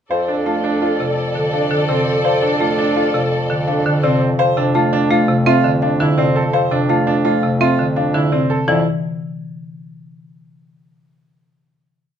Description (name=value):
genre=classical, minimalist pattern music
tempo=168 BPM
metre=6/4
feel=straight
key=F major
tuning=A4 = 440 Hz
part: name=buzzing marimba with soft mallets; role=melody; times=0.1-8.8 s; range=D5 to A5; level=-23 LUFS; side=left 11 dB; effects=none
part: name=mellow French horn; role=second line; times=0.1-4.2 s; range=A4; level=-24 LUFS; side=equal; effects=none
part: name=rich studio string section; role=sustained chords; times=0.1-4.2 s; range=A4 to D5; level=-23 LUFS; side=left 1 dB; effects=none
part: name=bright grand piano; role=arpeggios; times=0.1-8.8 s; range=C4 to C5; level=-19 LUFS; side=right 4 dB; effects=none
part: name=mellow bassoon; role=bass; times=0.1-8.8 s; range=F2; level=-22 LUFS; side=right 1 dB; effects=none
part: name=marimba with hard mallets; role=accompaniment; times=0.5-8.8 s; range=C3 to C4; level=-19 LUFS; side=equal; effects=none
room=moderate large studio reverb, RT60 0.9 s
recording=dark, warm production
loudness=-14 LUFS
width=side -8 dB against mid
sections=0.1-8.7 A section; 8.7-10.8 final chord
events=none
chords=0.1 F6; 8.7 Dmadd9/F (rootless)